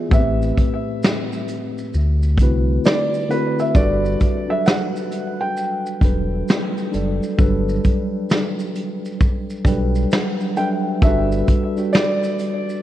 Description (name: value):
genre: lo-fi hip hop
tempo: 66 BPM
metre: 4/4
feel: swing 64% on 16ths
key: G major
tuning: A4 = 440 Hz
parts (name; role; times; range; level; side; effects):
- felt-muted upright piano; melody; 0.0-12.8 s; B4 to G5; -24 LUFS; right 2 dB; low-pass filter, ping-pong delay
- mellow tine electric piano; accompaniment; 0.0-12.8 s; A2 to G5; -22 LUFS; equal; medium stereo tremolo, cassette tape, low-pass filter
- sub bass with octave; bass; 0.1-11.4 s; E1 to D2; -20 LUFS; equal; none
- vintage brush drum kit; drums; 0.1-12.8 s; hi-hat, kick drum, shaker, snare drum; -19 LUFS; equal; none
room: moderate plate reverb, RT60 2.8 s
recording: dreamy mix soaked in reverb, cassette tape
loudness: -17 LUFS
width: side -13 dB against mid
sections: 0.0-11.0 A section; 11.0-12.8 B section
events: none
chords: 0.1 Am9; 1.9 D13; 3.8 Gmaj7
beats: | 0.12 1.02 1.93 2.84 | 3.75 4.66 5.57 6.48 | 7.39 8.30 9.21 10.12 | 11.02 11.93